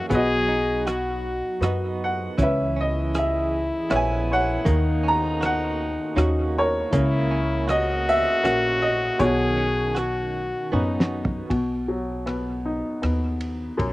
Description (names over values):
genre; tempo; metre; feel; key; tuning
acoustic folk-pop ballad; 79 BPM; 3/4; straight; unclear; A4 = 439 Hz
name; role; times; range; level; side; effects
bright upright piano; melody; 0.0-13.9 s; F#2 to A#5; -24 LUFS; equal; slapback echo
stopped French horn; second line; 0.0-11.5 s; D#4 to G#4; -26 LUFS; left 2 dB; slapback echo
direct-recorded clean electric guitar; arpeggios; 0.0-11.6 s; D#3 to G#4; -32 LUFS; right 4 dB; tremolo
upright bass; bass; 0.1-13.9 s; A#1 to F#2; -27 LUFS; equal; none
cloth-damped thuddy drum kit; drums; 0.1-13.9 s; hi-hat, kick drum, ride cymbal, rim click, snare drum, toms; -26 LUFS; equal; none
room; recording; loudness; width
little or no reverb; recorded outdoors, with no room sound; -21 LUFS; side -18 dB against mid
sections
0.0-11.5 A section; 11.5-13.9 B section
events
drum fill 10.7-11.5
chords
0.1 B; 2.4 C#m7; 4.7 D#m7; 6.9 F#/C#; 9.2 Badd9; 11.5 B